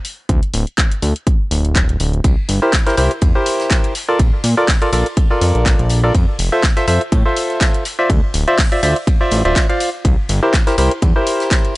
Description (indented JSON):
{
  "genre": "piano house",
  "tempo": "123 BPM",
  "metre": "4/4",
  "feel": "swing 55% on 16ths",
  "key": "C mixolydian",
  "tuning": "A4 = 442 Hz",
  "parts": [
    { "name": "house drum kit", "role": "drums", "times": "0.0-11.7 s", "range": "handclaps, hi-hat", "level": "-21 LUFS", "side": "left 1 dB", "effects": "none" },
    { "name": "fat analog bass", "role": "bass", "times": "0.3-11.1 s", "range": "D1 to Bb2", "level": "-16 LUFS", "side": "equal", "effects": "sidechain pumping" },
    { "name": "electronic kick drum", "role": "drums", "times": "0.3-11.6 s", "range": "none", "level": "-15 LUFS", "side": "equal", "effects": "none" },
    { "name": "unplugged drum kit", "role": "drums", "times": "2.2-11.7 s", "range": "hi-hat, ride cymbal, snare drum", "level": "-31 LUFS", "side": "left 1 dB", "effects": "none" },
    { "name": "percussive organ stab", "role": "riff", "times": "2.6-11.7 s", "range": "E4 to F5", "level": "-17 LUFS", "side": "equal", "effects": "chorus, cassette tape, sidechain pumping, analog delay" }
  ],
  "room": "little or no reverb",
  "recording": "dry, gritty hardware recording, nothing above 10.8 kHz",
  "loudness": "-13 LUFS",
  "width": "side -20 dB against mid",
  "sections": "0.0-11.8 A section",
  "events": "none",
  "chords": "0.0 N.C.; 2.2 C7; 4.0 Bbmaj7; 6.1 Fmaj7; 7.9 Dm9; 10.0 C7",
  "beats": "| 0.29 0.78 1.27 1.75 | 2.24 2.73 3.22 3.71 | 4.19 4.68 5.17 5.66 | 6.15 6.63 7.12 7.61 | 8.10 8.59 9.07 9.56 | 10.05 10.54 11.02 11.51"
}